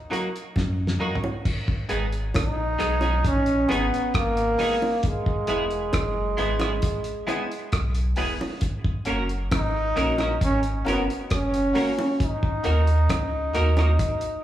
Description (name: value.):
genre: roots reggae.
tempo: 67 BPM.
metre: 4/4.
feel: straight.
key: G# minor.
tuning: A4 = 440 Hz.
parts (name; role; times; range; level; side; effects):
clean electric guitar; accompaniment; 0.1-13.9 s; F#3 to A#4; -30 LUFS; right 3 dB; lush chorus, dub echo, slapback echo.
bright upright piano; stabs; 0.1-13.7 s; C#4 to B4; -34 LUFS; left 6 dB; slapback echo.
cloth-damped thuddy drum kit; drums; 0.1-14.4 s; crash cymbal, hi-hat, kick drum, rim click, snare drum, toms; -27 LUFS; equal; none.
bongos; percussion; 0.1-14.0 s; none; -35 LUFS; right 1 dB; slapback echo.
warm sub bass; bass; 0.6-14.0 s; E1 to F#2; -25 LUFS; equal; none.
bright trombone; melody; 2.4-14.4 s; G#3 to D#4; -25 LUFS; equal; dub echo, slapback echo.
room: light reverb, studio reverb.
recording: live gig heard through the venue's PA, club reverb.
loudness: -21 LUFS.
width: side -12 dB against mid.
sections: 0.0-1.5 A section; 1.5-14.4 B section.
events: drum fill 0.6-1.5.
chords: 0.0 D#m; 1.5 G#m; 5.0 E; 8.6 F#; 12.2 D#m.